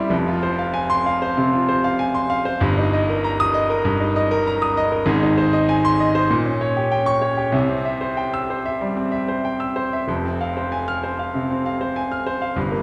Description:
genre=classical, virtuoso piano study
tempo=96 BPM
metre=4/4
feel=rubato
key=F minor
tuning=A4 = 441 Hz
part: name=clear grand piano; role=solo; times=0.0-12.8 s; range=F1 to F6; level=-21 LUFS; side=equal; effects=none
room=wet scoring stage reverb, RT60 1.8 s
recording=heard from further back in the room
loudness=-21 LUFS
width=mono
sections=0.1-12.8 A section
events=none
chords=0.1 Fm; 2.6 Eb/G; 5.1 Ab; 6.3 Gdim/Bb; 7.5 C; 10.1 Fm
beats=| 0.11 0.74 1.36 1.98 | 2.61 3.23 3.85 4.46 | 5.07 5.67 6.29 6.91 | 7.54 8.17 8.80 9.44 | 10.08 10.71 11.33 11.94 | 12.56

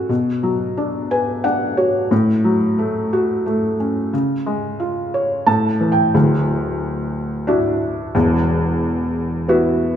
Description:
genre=folk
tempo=89 BPM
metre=3/4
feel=straight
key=F# harmonic minor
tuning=A4 = 440 Hz
part: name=felt-muted upright piano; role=solo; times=0.0-10.0 s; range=D1 to A5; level=-16 LUFS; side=equal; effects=none
room=wet recital hall reverb, RT60 1.8 s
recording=recorded in a church or concert hall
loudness=-16 LUFS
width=side -9 dB against mid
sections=0.0-6.1 A section; 6.1-10.0 B section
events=none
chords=0.1 Bm; 2.1 F#m/A; 4.1 C#; 5.5 A5; 6.1 Dadd9; 8.1 Esus2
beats=| 0.10 0.77 1.44 | 2.11 2.79 3.46 | 4.13 4.80 5.47 | 6.14 6.81 7.48 | 8.15 8.82 9.48

